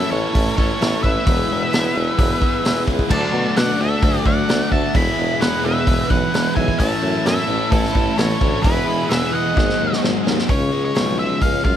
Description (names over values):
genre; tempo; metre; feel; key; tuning
classic rock; 130 BPM; 4/4; straight; unclear; A4 = 440 Hz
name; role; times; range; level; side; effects
octave-fuzz lead guitar; melody; 0.0-11.8 s; A4 to B5; -23 LUFS; left 1 dB; distortion
biting lead guitar; second line; 0.0-10.0 s; E4 to E5; -28 LUFS; right 4 dB; overdrive, analog delay
picked steel-string acoustic guitar; accompaniment; 0.0-11.8 s; A2 to A4; -28 LUFS; left 4 dB; none
biting overdriven guitar; riff; 0.0-11.8 s; E2 to G#4; -24 LUFS; left 1 dB; none
clear tuba; bass; 0.0-11.8 s; E1 to B2; -24 LUFS; equal; none
vintage drum kit; drums; 0.3-11.8 s; crash cymbal, hi-hat, kick drum, snare drum; -20 LUFS; equal; none
sludgy distorted guitar; riff; 3.1-10.5 s; E2 to D4; -25 LUFS; equal; overdrive
room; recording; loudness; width
small room ambience; none; -16 LUFS; side -10 dB against mid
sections
0.0-10.5 A section; 10.5-11.8 B section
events
drum fill 9.6-10.5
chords
0.0 A; 1.3 E; 3.1 D; 4.9 E; 6.8 A; 8.6 E; 9.6 G#7; 10.5 C#